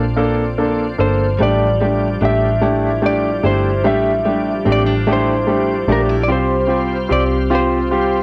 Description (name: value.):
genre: six-eight pop ballad.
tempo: 49 BPM (dotted quarters).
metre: 6/8.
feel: straight.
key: unclear.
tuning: A4 = 440 Hz.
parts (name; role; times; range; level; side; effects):
clean lap steel guitar; melody; 0.0-8.2 s; Bb4 to E5; -23 LUFS; equal; cassette tape.
clear baby grand piano; accompaniment; 0.0-8.2 s; A3 to A4; -20 LUFS; equal; cassette tape.
bright tonewheel organ; sustained chords; 0.0-8.2 s; C3 to G4; -29 LUFS; equal; overdrive, chorus vibrato, slow rotary speaker, cassette tape.
vintage muted fingered electric bass; bass; 0.0-8.2 s; G1 to C2; -23 LUFS; equal; none.
direct-recorded clean electric guitar; arpeggios; 1.4-8.2 s; G3 to F4; -26 LUFS; equal; cassette tape, analog delay.
room: moderate spring reverb, RT60 1.2 s, digital ambience.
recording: home recording on cassette.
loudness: -16 LUFS.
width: mono.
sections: 0.0-8.2 A section.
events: none.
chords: 0.0 Bbmaj7; 1.4 A7sus4; 6.3 Csus4.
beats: 0.17 | 1.39 2.62 | 3.84 5.06 | 6.29 7.51.